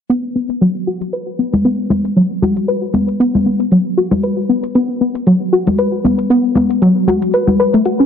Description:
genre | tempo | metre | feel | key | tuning
deep house | 116 BPM | 4/4 | swing 56% on 16ths | unclear | A4 = 440 Hz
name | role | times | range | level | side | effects
soft round pluck | arpeggios | 0.1-8.1 s | F#3 to B4 | -14 LUFS | left 1 dB | chorus, ping-pong delay
electronic hi-hat | drums | 0.1-8.0 s | none | -44 LUFS | right 2 dB | studio reverb
congas | percussion | 1.5-7.6 s | none | -17 LUFS | left 1 dB | none
room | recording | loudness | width
moderate plate reverb, RT60 2.0 s | dense, heavily limited modern master, low-pass filter | -12 LUFS | side -8 dB against mid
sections
0.1-8.1 A section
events
filter sweep on synth arpeggio sound 0.1-8.1; filter sweep 0.1-8.1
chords
none

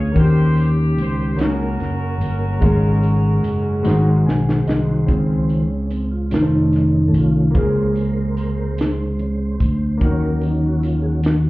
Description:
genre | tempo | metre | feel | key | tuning
slow gospel | 49 BPM (dotted quarters) | 6/8 | straight | Db major | A4 = 440 Hz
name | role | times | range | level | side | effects
warm horn section | melody | 0.0-4.3 s | Db4 to Db5 | -28 LUFS | equal | none
warm baby grand piano | accompaniment | 0.0-11.5 s | Ab2 to Ab5 | -24 LUFS | left 2 dB | none
mellow tonewheel organ | sustained chords | 0.0-11.5 s | Db3 to Db5 | -22 LUFS | right 1 dB | slow rotary speaker, chorus vibrato
fingered electric bass | bass | 0.0-11.5 s | F1 to Eb2 | -18 LUFS | equal | none
tight funk drum kit | drums | 0.2-11.4 s | hi-hat, kick drum, snare drum | -20 LUFS | equal | none
tambourine | percussion | 0.6-11.5 s | none | -49 LUFS | right 4 dB | none
room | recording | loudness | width
moderate large studio reverb, RT60 1.1 s | heard muffled through a wall, club reverb, EQ, nothing above 10.5 kHz | -16 LUFS | side -19 dB against mid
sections
0.0-5.1 A section; 5.1-11.5 B section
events
drum fill 3.9-5.1; grand piano fill 3.9-5.1; tonewheel organ solo 5.1-11.5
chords
0.2 Eb7; 1.4 Gb; 2.6 Db/Ab; 3.9 Ab7; 5.1 Dbmaj7; 6.3 F7b13; 7.5 Bbm7/Db; 10.0 Ebm7

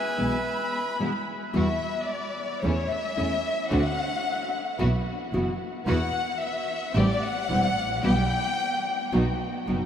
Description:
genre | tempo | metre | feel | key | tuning
tango | 111 BPM | 4/4 | rubato | E minor | A4 = 437 Hz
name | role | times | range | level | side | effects
bandoneon | melody | 0.0-1.0 s | B4 to E5 | -34 LUFS | right 1 dB | none
warm symphonic violin section | second line | 0.0-9.1 s | C#5 to B5 | -28 LUFS | left 3 dB | none
nylon-string guitar | accompaniment | 0.2-9.8 s | B2 to F#4 | -30 LUFS | equal | none
warm studio string section | stabs | 0.2-9.9 s | G3 to G4 | -33 LUFS | right 1 dB | none
clear double bass | bass | 0.2-9.9 s | E1 to E2 | -28 LUFS | right 1 dB | none
room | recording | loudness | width
wet huge ambient reverb, RT60 7.2 s | in a vast, echoing space | -24 LUFS | side -9 dB against mid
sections
0.0-1.6 A section; 1.6-9.9 B section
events
violin section solo 1.6-9.9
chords
0.0 E; 1.6 Emadd9; 2.6 A/E; 3.7 D7; 4.8 Bsus4; 5.9 Esus2; 7.0 Am7; 8.0 Em/B; 9.1 B

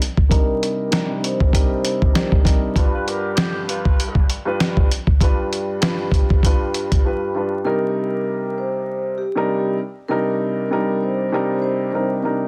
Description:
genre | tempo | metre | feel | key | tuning
hip hop, boom-bap hip-hop | 98 BPM | 4/4 | swing 58% on 16ths | C minor | A4 = 440 Hz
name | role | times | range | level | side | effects
dusty soul sampler-style drum kit | drums | 0.0-7.0 s | hi-hat, kick drum, snare drum | -19 LUFS | equal | none
vibraphone with soft mallets | melody | 0.3-2.3, 7.7-12.1 s | G4 to C5 | -28 LUFS | equal | high-pass filter, low-pass filter
dark upright piano | accompaniment | 0.3-12.5 s | G2 to B4 | -24 LUFS | equal | cassette tape, high-pass filter, low-pass filter
mellow saxophone section | stabs | 2.9-4.3 s | D3 to B4 | -31 LUFS | equal | high-pass filter, low-pass filter, tape echo
room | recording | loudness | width
small room ambience | dense, heavily limited modern master, vinyl crackle | -20 LUFS | mono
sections
0.0-7.7 A section; 7.7-12.5 B section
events
filter sweep 0.0-7.7; break 7.0-7.7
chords
0.0 Cm7; 2.8 G7; 7.7 Cm7

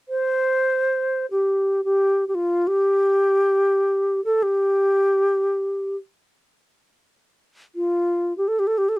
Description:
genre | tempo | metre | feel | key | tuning
chinese traditional | free time | none | none | unclear | A4 = 440 Hz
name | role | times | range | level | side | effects
bright xiao | melody | 0.1-9.0 s | F4 to C5 | -18 LUFS | equal | none
room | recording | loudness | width
moderate booth ambience, RT60 0.2 s | dark, warm production | -18 LUFS | side -20 dB against mid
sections
0.0-9.0 A section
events
none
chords
none

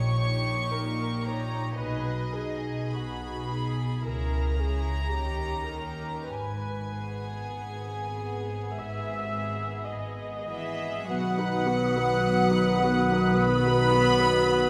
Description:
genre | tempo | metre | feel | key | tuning
classical, slow romantic movement for symphony orchestra | 48-57 BPM | 4/4 | rubato | G# minor, B major from 11.1 s | A4 = 440 Hz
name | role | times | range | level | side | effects
rich studio violin section | melody | 0.0-14.7 s | D#5 to C#6 | -36 LUFS | equal | none
rich studio violin section | second line | 0.0-14.7 s | B3 to B5 | -39 LUFS | equal | none
dark studio viola section | accompaniment | 0.0-14.7 s | B3 to E5 | -36 LUFS | equal | none
warm studio cello section | bass | 0.0-14.7 s | G#2 to B3 | -35 LUFS | equal | none
warm studio double bass section | bass | 0.0-14.7 s | G#1 to D#2 | -34 LUFS | equal | none
clear oboe | second line | 11.1-14.7 s | B4 | -36 LUFS | equal | none
dark clarinet | second line | 11.1-14.7 s | F#4 | -37 LUFS | equal | none
small flute group | second line | 11.1-14.7 s | D#6 | -37 LUFS | equal | none
mellow bassoon | accompaniment | 11.1-14.7 s | B3 | -34 LUFS | equal | none
dark French horn section | sustained chords | 11.1-14.7 s | B3 to F#4 | -35 LUFS | equal | none
warm trombone section | sustained chords | 11.1-14.7 s | D#3 to F#3 | -34 LUFS | equal | none
warm trumpet section | stabs | 11.1-14.7 s | B4 | -32 LUFS | equal | none
room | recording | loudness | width
wet scoring stage reverb, RT60 1.6 s | none | -28 LUFS | mono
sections
0.0-11.1 A section; 11.1-14.7 B section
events
none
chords
0.0 D#7/A#; 1.8 G#m/B; 4.0 A#m7b5/C#; 5.1 D#7; 6.3 G#m; 11.1 B

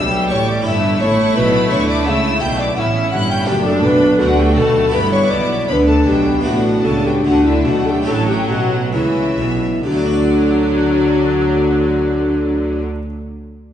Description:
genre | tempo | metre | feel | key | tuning
classical, baroque-style concerto movement with solo episodes | 65-86 BPM | 4/4 | straight | D major | A4 = 440 Hz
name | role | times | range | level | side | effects
clear chamber violin section | melody | 0.0-12.8 s | D5 to G6 | -25 LUFS | left 4 dB | none
rich chamber violin section | second line | 0.0-12.8 s | C#4 to G4 | -20 LUFS | left 1 dB | none
harpsichord | accompaniment | 0.0-13.1 s | F#2 to D5 | -26 LUFS | equal | none
rich symphonic viola section | accompaniment | 0.0-12.8 s | E3 to D4 | -24 LUFS | right 1 dB | none
clear chamber double bass section | bass | 0.0-12.8 s | F#1 to D2 | -21 LUFS | right 2 dB | none
rich studio cello section | bass | 0.0-12.8 s | F#2 to D3 | -21 LUFS | right 2 dB | none
mellow hollow tenor recorder | melody | 0.3-12.8 s | E4 to G5 | -19 LUFS | left 2 dB | none
room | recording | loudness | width
wet recital hall reverb, RT60 1.8 s | recorded in a church or concert hall, nothing above 10.5 kHz | -13 LUFS | side -10 dB against mid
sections
0.0-9.8 A section; 9.8-13.5 B section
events
slowing down 2.1-9.8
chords
0.0 Em7/G; 3.5 D/F#; 4.9 G; 6.5 D/A; 8.1 A7; 9.8 D

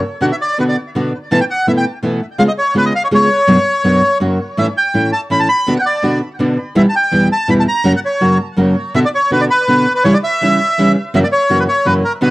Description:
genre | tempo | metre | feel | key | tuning
tango | 165 BPM | 3/4 | rubato | B minor | A4 = 444 Hz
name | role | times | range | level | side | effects
nylon-string guitar | accompaniment | 0.0-12.3 s | E2 to G#4 | -14 LUFS | equal | none
bandoneon | melody | 0.2-12.3 s | A#4 to B5 | -14 LUFS | equal | tape echo
room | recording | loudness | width
moderate studio reverb, RT60 0.6 s | cassette tape | -11 LUFS | side -19 dB against mid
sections
0.0-12.3 A section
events
none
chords
0.2 Bm; 1.3 Esus4/B; 2.4 C#7; 3.5 Bm/F#; 4.2 F#; 4.6 A; 5.7 Bm; 6.8 Em; 7.8 F#; 8.9 Bm; 10.0 C#dim; 11.1 F#7

